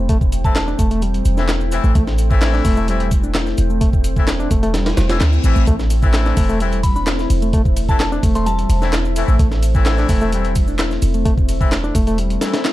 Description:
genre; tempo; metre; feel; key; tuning
breakbeat, breaks; 129 BPM; 4/4; straight; unclear; A4 = 442 Hz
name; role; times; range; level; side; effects
deep dark ambient pad; sustained chords; 0.0-12.7 s; A3 to G5; -26 LUFS; left 1 dB; chorus, built-in reverb, vintage 12-bit sampler grit, sidechain pumping
bright reed electric piano; riff; 0.0-12.7 s; G3 to E4; -23 LUFS; equal; fast tremolo, vintage 12-bit sampler grit, tape echo
warm 808-style bass; bass; 0.0-12.4 s; E1 to D2; -18 LUFS; equal; none
breakbeat sampler-style drum kit; drums; 0.1-12.7 s; hi-hat, kick drum, snare drum; -18 LUFS; equal; none
punchy analog drum machine; drums; 0.1-12.7 s; handclaps, ride cymbal, shaker; -29 LUFS; equal; overdrive
soft synth bell; melody; 0.4-0.6, 6.8-8.8 s; A5 to C6; -26 LUFS; left 1 dB; chorus, old record sound, tape echo
brilliant horn section; stabs; 0.4-12.6 s; E3 to E4; -25 LUFS; left 6 dB; tape echo
reverse cymbal; sound effects; 4.9-5.7 s; none; -31 LUFS; left 4 dB; none
room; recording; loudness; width
little or no reverb; dark, warm production; -14 LUFS; side -16 dB against mid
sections
0.0-12.7 A section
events
reverse cymbal 4.9-5.7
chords
0.0 Am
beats
| 0.09 0.56 1.02 1.49 | 1.95 2.42 2.88 3.35 | 3.81 4.28 4.74 5.21 | 5.67 6.14 6.60 7.07 | 7.53 8.00 8.46 8.93 | 9.39 9.86 10.32 10.79 | 11.25 11.72 12.18 12.65

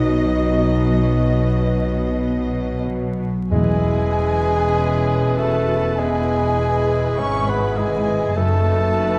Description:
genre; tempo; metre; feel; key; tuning
classical, slow romantic movement for symphony orchestra; 44-53 BPM; 4/4; rubato; E major; A4 = 440 Hz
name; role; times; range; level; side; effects
rich chamber violin section; melody; 0.0-9.2 s; G#4 to D#5; -37 LUFS; equal; none
clear oboe; second line; 0.0-9.2 s; G#4 to D#5; -33 LUFS; equal; none
dark clarinet; second line; 0.0-9.2 s; B3 to B4; -33 LUFS; equal; none
mellow hollow flute section; second line; 0.0-9.2 s; D#5 to C#6; -31 LUFS; equal; none
rich studio violin section; second line; 0.0-9.2 s; D#5 to C#6; -35 LUFS; equal; none
rich chamber viola section; accompaniment; 0.0-9.2 s; B3 to B4; -33 LUFS; equal; none
warm bassoon; accompaniment; 0.0-9.2 s; F#3 to C#4; -26 LUFS; equal; none
mellow French horn section; sustained chords; 0.0-9.2 s; D#4 to B4; -30 LUFS; equal; none
concert harp; arpeggios; 0.0-9.2 s; E2 to F#5; -28 LUFS; equal; none
rich studio cello section; bass; 0.0-9.2 s; E2 to B2; -28 LUFS; equal; none
warm chamber double bass section; bass; 0.0-9.2 s; E1 to B1; -26 LUFS; equal; none
timpani; percussion; 3.5-5.3 s; E2; -25 LUFS; equal; none
room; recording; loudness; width
wet scoring stage reverb, RT60 1.8 s; dark, warm production, vinyl crackle, faint mains hum; -19 LUFS; mono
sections
0.0-3.5 A section; 3.5-9.2 B section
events
none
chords
0.0 B; 3.5 E; 8.4 B7/F#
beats
0.89 2.19 | 3.51 4.76 5.99 7.19 | 8.36

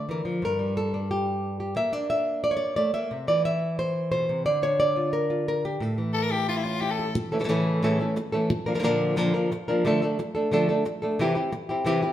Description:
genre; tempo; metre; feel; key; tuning
flamenco; 178 BPM; 4/4; straight; A phrygian dominant; A4 = 441 Hz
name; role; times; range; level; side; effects
flamenco guitar; melody; 0.0-12.1 s; G2 to E5; -23 LUFS; equal; none
raspy soprano saxophone; second line; 6.1-7.2 s; E4 to Bb4; -28 LUFS; left 4 dB; none
room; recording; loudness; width
wet stone room reverb, RT60 1.3 s; band playing live in one room; -23 LUFS; side -12 dB against mid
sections
0.0-7.1 A section; 7.1-12.1 B section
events
none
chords
0.4 Gm; 1.8 Bb; 3.1 C; 4.5 Dm; 5.8 A; 8.5 Bb; 9.8 Dm; 11.2 C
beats
0.10 | 0.43 0.76 1.10 1.43 | 1.77 2.10 2.44 2.77 | 3.11 3.44 3.78 4.12 | 4.45 4.79 5.13 5.46 | 5.80 6.14 6.47 6.81 | 7.15 7.49 7.82 8.16 | 8.50 8.84 9.17 9.51 | 9.85 10.18 10.52 10.86 | 11.19 11.53 11.86

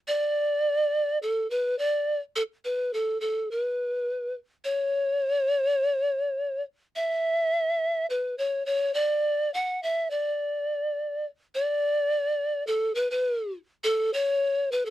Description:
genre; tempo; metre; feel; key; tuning
andean folk; 105 BPM; 2/4; straight; unclear; A4 = 441 Hz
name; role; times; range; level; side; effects
breathy polished pan flute; solo; 0.1-14.9 s; A4 to F#5; -24 LUFS; equal; none
room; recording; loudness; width
little or no reverb; dry, close 1970s-style studio recording; -25 LUFS; side -14 dB against mid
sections
0.0-4.7 A section; 4.7-13.8 A section; 13.8-14.9 B section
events
none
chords
none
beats
| 0.07 0.65 | 1.22 1.80 | 2.37 2.95 | 3.52 4.09 | 4.67 5.24 | 5.81 6.39 | 6.96 7.53 | 8.10 8.68 | 9.25 9.82 | 10.40 10.97 | 11.54 12.12 | 12.69 13.27 | 13.84 14.41

